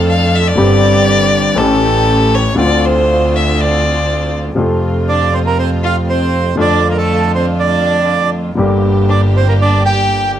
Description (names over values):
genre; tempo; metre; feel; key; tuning
tango; 120 BPM; 4/4; rubato; D minor, F major from 4.6 s; A4 = 440 Hz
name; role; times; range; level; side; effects
clear violin; second line; 0.0-10.3 s; A3 to F5; -16 LUFS; left 2 dB; none
warm grand piano; accompaniment; 0.0-10.4 s; G1 to A4; -15 LUFS; left 1 dB; none
warm studio string section; stabs; 0.0-10.4 s; A3 to A4; -23 LUFS; right 2 dB; none
clear double bass; bass; 0.0-10.4 s; G1 to F2; -17 LUFS; right 2 dB; none
bandoneon; melody; 5.1-10.3 s; A4 to G5; -16 LUFS; right 5 dB; none
room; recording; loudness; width
moderate studio ambience, RT60 0.5 s; none; -10 LUFS; side -10 dB against mid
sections
0.0-4.6 A section; 4.6-10.4 B section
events
violin solo 0.0-4.6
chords
0.0 Dm/F; 0.6 Gsus4; 1.6 A7; 2.6 Dm7; 4.6 F; 6.6 Dm/F; 8.6 Gm